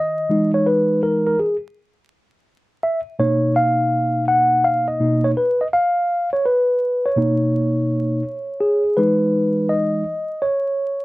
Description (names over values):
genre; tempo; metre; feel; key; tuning
hip hop; 83 BPM; 4/4; swing 66% on 16ths; E lydian; A4 = 440 Hz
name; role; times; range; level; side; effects
mellow tine electric piano; solo; 0.0-11.0 s; B2 to F#5; -16 LUFS; equal; slow stereo tremolo
room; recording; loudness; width
wet small room ambience, RT60 0.5 s; worn, warbling old tape, cassette tape, vinyl crackle, warbly pitch drift; -16 LUFS; side -19 dB against mid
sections
0.0-9.0 A section; 9.0-11.0 B section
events
tine electric piano solo 0.0-9.0, 9.0-11.0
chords
0.0 Emaj7; 3.2 Bmaj9; 9.0 Emaj7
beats
| 0.31 1.03 1.76 2.48 | 3.20 3.92 4.65 5.37 | 6.09 6.82 7.54 8.26 | 8.98 9.71 10.43